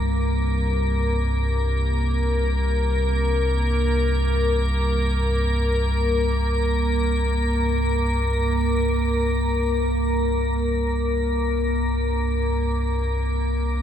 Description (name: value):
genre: dark ambient drone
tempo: free time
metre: none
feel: none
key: unclear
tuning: A4 = 440 Hz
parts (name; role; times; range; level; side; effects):
- deep rumbling drone; drone; 0.0-13.8 s; C2 to G2; -22 LUFS; equal; built-in reverb, wide subtle chorus
- icy glass pad; texture; 0.0-13.8 s; Bb3 to Bb4; -24 LUFS; left 1 dB; chorus, built-in reverb
room: wet cathedral reverb, RT60 6.6 s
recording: none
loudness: -20 LUFS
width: side -9 dB against mid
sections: 0.0-13.8 A section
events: filter sweep on synth drone 0.0-13.8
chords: 0.0 C5